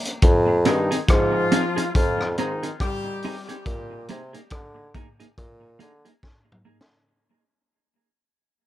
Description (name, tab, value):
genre	roots reggae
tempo	70 BPM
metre	4/4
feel	swing 58% on 16ths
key	unclear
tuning	A4 = 439 Hz
part	crunchy breakbeat drum kit	drums	0.1-7.0 s	hi-hat, kick drum, rim click, snare drum, toms	-22 LUFS	equal	none
part	warm bassoon	bass	0.2-6.0 s	F2 to D3	-23 LUFS	equal	none
part	warm horn section	second line	0.7-3.4 s	Eb3 to G4	-27 LUFS	left 2 dB	tape echo
part	semi-hollow electric guitar	accompaniment	0.7-6.8 s	Bb3 to Ab4	-27 LUFS	right 1 dB	vibrato effect, tape echo
room	light reverb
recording	echo-heavy mix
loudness	-19 LUFS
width	side -14 dB against mid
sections	0.0-7.1 A section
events	fade-out 0.0-7.1; drum fill 6.2-7.1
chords	0.2 Fm7; 3.7 Bb7sus4